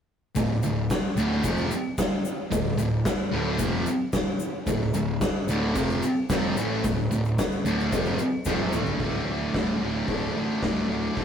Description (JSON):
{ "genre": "garage rock duo or trio", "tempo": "111 BPM", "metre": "4/4", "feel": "straight", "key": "D minor", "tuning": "A4 = 440 Hz", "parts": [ { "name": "thick fuzz guitar", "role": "riff", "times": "0.4-11.2 s", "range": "D2 to A3", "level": "-26 LUFS", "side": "equal", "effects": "distortion" }, { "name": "fuzz picked electric bass", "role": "bass", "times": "0.4-11.2 s", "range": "D1 to A1", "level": "-33 LUFS", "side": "equal", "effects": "overdrive" }, { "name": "oversized low-tuned drum kit", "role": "drums", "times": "0.4-11.2 s", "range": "hi-hat, kick drum, snare drum, toms", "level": "-27 LUFS", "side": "equal", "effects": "none" }, { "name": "egg shaker", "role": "percussion", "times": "0.4-8.9 s", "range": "none", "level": "-43 LUFS", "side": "left 5 dB", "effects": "none" } ], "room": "light reverb", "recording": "rough rehearsal-room recording, warm saturation", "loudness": "-23 LUFS", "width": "side -8 dB against mid", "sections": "0.4-9.0 A section; 9.0-11.2 B section", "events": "drum fill 8.5-9.0", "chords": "0.4 Dm; 9.0 D5", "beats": "| 0.35 0.89 1.43 1.97 | 2.51 3.05 3.59 4.13 | 4.67 5.21 5.75 6.29 | 6.83 7.38 7.92 8.46 | 9.00 9.54 10.09 10.63 | 11.17" }